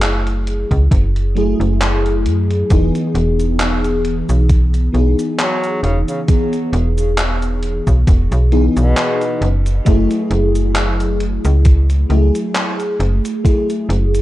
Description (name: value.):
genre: vaporwave.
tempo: 67 BPM.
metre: 4/4.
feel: swing 55% on 16ths.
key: E major.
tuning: A4 = 440 Hz.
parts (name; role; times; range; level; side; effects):
FM electric piano with soft pad layer; accompaniment; 0.0-14.2 s; E3 to G#4; -19 LUFS; left 1 dB; ensemble chorus, tape echo.
slap-like FM bass; bass; 0.0-14.2 s; E1 to F#2; -15 LUFS; equal; tube saturation.
gated 80s digital drum machine; drums; 0.0-14.2 s; cabasa, handclaps, hi-hat; -23 LUFS; equal; gated reverb, overdrive, vintage 12-bit sampler grit.
electronic kick drum; drums; 0.7-13.6 s; none; -13 LUFS; equal; overdrive, vintage 12-bit sampler grit.
clear tenor saxophone; melody; 5.4-9.5 s; B2 to F#3; -25 LUFS; equal; tape echo.
room: light reverb.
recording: none.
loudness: -13 LUFS.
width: side -15 dB against mid.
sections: 0.0-14.2 A section.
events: none.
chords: 0.0 F#m9; 2.7 Emaj7; 9.4 F#m9.